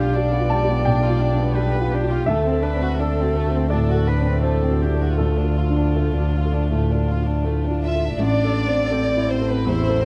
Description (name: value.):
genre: neoclassical piano and strings.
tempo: 79-85 BPM.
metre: 4/4.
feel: rubato.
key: unclear.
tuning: A4 = 441 Hz.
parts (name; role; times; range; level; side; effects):
warm chamber violin section; melody; 0.0-10.1 s; G3 to E5; -28 LUFS; equal; none.
rich viola; accompaniment; 0.0-10.1 s; C4 to D5; -30 LUFS; equal; none.
warm upright piano; accompaniment; 0.0-10.1 s; A1 to A5; -25 LUFS; equal; none.
warm double bass; bass; 0.0-10.1 s; A1 to D2; -24 LUFS; equal; none.
room: light reverb.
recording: dark, warm production.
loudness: -20 LUFS.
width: mono.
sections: 0.0-8.2 A section; 8.2-10.1 A section.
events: none.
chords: 0.0 G7/B; 2.3 D7; 5.2 Dm; 8.2 Am.